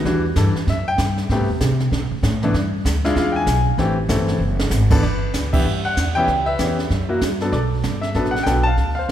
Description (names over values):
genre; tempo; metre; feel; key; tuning
jazz piano trio; 193 BPM; 4/4; swing 62% on 8ths; G major; A4 = 440 Hz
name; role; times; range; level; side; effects
clear grand piano; melody; 0.0-9.1 s; C3 to A5; -21 LUFS; left 2 dB; none
upright bass; bass; 0.0-9.1 s; F#1 to D3; -21 LUFS; right 1 dB; none
jazz brush drum kit; drums; 0.0-9.1 s; brushed snare drum, crash cymbal, hi-hat, kick drum, ride cymbal, snare drum; -24 LUFS; right 2 dB; none
room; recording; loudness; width
moderate scoring stage reverb, RT60 1.9 s; recorded in a church or concert hall; -17 LUFS; side -11 dB against mid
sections
0.0-5.0 A section; 5.0-9.1 B section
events
grand piano solo 0.0-5.0; drum fill 4.4-4.7; band accent 5.5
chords
0.0 Em9; 1.3 Am9; 1.9 D5; 2.5 G5; 3.2 E7b9; 3.8 Am7; 4.4 N.C.; 5.0 G6; 6.3 C#m7b5; 6.9 F#7(no3); 7.5 Bm7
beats
| 0.04 0.35 0.67 0.98 | 1.29 1.60 1.91 2.22 | 2.53 2.84 3.15 3.47 | 3.78 4.09 4.40 4.71 | 5.02 5.33 5.65 5.96 | 6.27 6.58 6.90 7.21 | 7.52 7.83 8.15 8.46 | 8.77 9.09